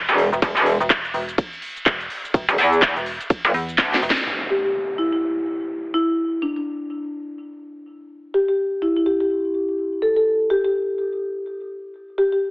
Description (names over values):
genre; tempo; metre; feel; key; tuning
bass house; 125 BPM; 4/4; swing 60% on 16ths; E minor; A4 = 440 Hz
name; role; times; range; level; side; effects
metallic FM bass; bass; 0.0-4.1 s; E1 to E2; -25 LUFS; equal; overdrive, sidechain pumping
metallic wobble bass; bass; 0.1-4.0 s; E1 to E2; -16 LUFS; equal; distortion, chorus, overdrive, sidechain pumping
house drum kit; drums; 0.1-4.2 s; cabasa, handclaps, hi-hat, ride cymbal, snare drum; -22 LUFS; equal; studio reverb
electronic kick drum; drums; 0.4-3.9 s; none; -19 LUFS; equal; studio reverb
impact; sound effects; 4.3-6.2 s; none; -35 LUFS; equal; none
marimba with medium mallets; melody; 4.5-12.4 s; D4 to A4; -20 LUFS; equal; vintage 12-bit sampler grit, tape echo
room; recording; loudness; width
moderate lush hall reverb, RT60 1.7 s; heavily compressed radio sound, multiband compression, telephone sound; -18 LUFS; side -27 dB against mid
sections
0.0-4.3 A section; 4.3-12.5 B section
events
drop 0.0-4.3; drum fill 3.8-4.3; band accent 4.1; impact 4.3-6.2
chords
none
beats
| 0.42 0.90 1.38 1.86 | 2.34 2.82 3.30 3.78 | 4.26 4.74 5.22 5.70 | 6.18 6.66 7.14 7.62 | 8.10 8.58 9.06 9.54 | 10.02 10.50 10.98 11.46 | 11.94